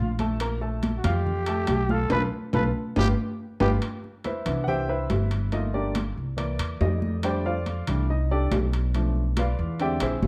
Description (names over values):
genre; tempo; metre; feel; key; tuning
Afro-Cuban jazz; 140 BPM; 4/4; straight; C major from 3.8 s; A4 = 440 Hz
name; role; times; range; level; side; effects
growling trumpet; melody; 0.0-3.7 s; F4 to B4; -32 LUFS; equal; none
clear grand piano; accompaniment; 0.0-10.3 s; D3 to F6; -32 LUFS; equal; none
upright bass; bass; 0.0-10.3 s; G1 to F2; -29 LUFS; equal; none
congas; percussion; 0.2-10.3 s; none; -34 LUFS; equal; none
timbales; percussion; 0.2-10.3 s; none; -35 LUFS; equal; none
room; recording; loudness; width
moderate large studio reverb, RT60 1.1 s; dark, warm production; -26 LUFS; mono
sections
0.0-3.8 A section; 3.8-10.3 B section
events
band accent 2.1-3.8; drum fill 3.2-3.8; grand piano solo 3.8-10.3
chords
0.4 Bb5; 2.1 Asus2/B; 3.0 G7; 3.8 Cmaj7; 5.5 Gm7; 6.4 C9; 7.2 F69; 8.9 Bm7b5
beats
| 0.41 0.83 1.26 1.69 | 2.12 2.54 2.97 3.40 | 3.82 4.25 4.68 5.10 | 5.53 5.96 6.38 6.81 | 7.24 7.67 8.09 8.52 | 8.94 9.37 9.80 10.22